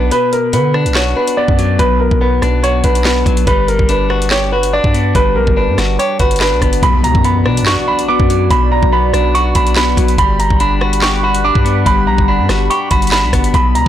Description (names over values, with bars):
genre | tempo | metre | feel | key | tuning
hip hop, drill | 143 BPM | 4/4 | half-time | B harmonic minor | A4 = 439 Hz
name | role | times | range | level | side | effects
dark baby grand piano | melody | 0.0-13.9 s | A#4 to D6 | -16 LUFS | right 3 dB | tape echo
clean electric guitar | accompaniment | 0.0-13.9 s | B2 to G4 | -18 LUFS | left 9 dB | none
long sustained 808-style bass | bass | 0.0-13.9 s | G1 to D3 | -16 LUFS | equal | none
drill drum kit | drums | 0.1-13.9 s | handclaps, hi-hat, kick drum, rim click, snare drum | -16 LUFS | equal | none
dark analog pad | sustained chords | 6.8-13.9 s | G3 to B5 | -20 LUFS | equal | chorus, phaser
impact | sound effects | 6.8-8.5 s | none | -25 LUFS | equal | none
room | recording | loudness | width
digital ambience | blown-out, overdriven recording, overdrive | -10 LUFS | side -11 dB against mid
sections
0.0-6.8 A section; 6.8-13.9 B section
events
kick muted 0.1-0.5; impact 6.8-8.5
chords
0.1 Bm; 3.5 Gmaj7; 6.8 Bm; 10.2 Gmaj7